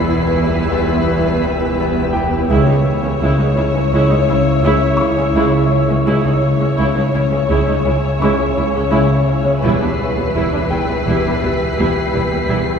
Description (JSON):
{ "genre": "cinematic, suspense film score", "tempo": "84 BPM", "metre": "5/4", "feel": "straight", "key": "unclear", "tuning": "A4 = 440 Hz", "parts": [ { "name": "muted symphonic violin section", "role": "melody", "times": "0.0-12.8 s", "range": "B4 to C#5", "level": "-22 LUFS", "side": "left 3 dB", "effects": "none" }, { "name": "muted symphonic viola section", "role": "accompaniment", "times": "0.0-12.7 s", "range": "G3 to E4", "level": "-20 LUFS", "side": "right 2 dB", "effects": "none" }, { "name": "wind-like tuned noise texture", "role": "sustained chords", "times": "0.0-12.8 s", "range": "E4 to E5", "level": "-24 LUFS", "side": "right 1 dB", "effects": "built-in reverb" }, { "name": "Celtic harp", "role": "riff", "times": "0.0-12.8 s", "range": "E2 to C#4", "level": "-19 LUFS", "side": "left 3 dB", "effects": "none" }, { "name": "muted studio double bass section", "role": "bass", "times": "0.0-12.6 s", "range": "E1 to C#2", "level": "-23 LUFS", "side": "right 2 dB", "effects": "none" }, { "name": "muted symphonic cello section", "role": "bass", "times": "0.0-12.6 s", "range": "C#2 to E2", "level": "-23 LUFS", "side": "right 2 dB", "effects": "none" }, { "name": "metallic inharmonic drone", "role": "drone", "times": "0.0-12.8 s", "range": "C#2", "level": "-25 LUFS", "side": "equal", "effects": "chorus, built-in reverb" }, { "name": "bright grand piano", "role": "texture", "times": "0.0-12.8 s", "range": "E4 to C#6", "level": "-29 LUFS", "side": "left 2 dB", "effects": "none" }, { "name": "muted symphonic violin section", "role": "texture", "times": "0.0-12.8 s", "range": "C#6 to B#6", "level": "-30 LUFS", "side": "left 2 dB", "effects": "none" } ], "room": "wet cathedral reverb, RT60 4.3 s", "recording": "recorded in a church or concert hall", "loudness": "-13 LUFS", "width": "side -6 dB against mid", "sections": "0.0-12.8 A section", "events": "none", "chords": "0.0 Em; 2.5 C#m; 9.6 Em" }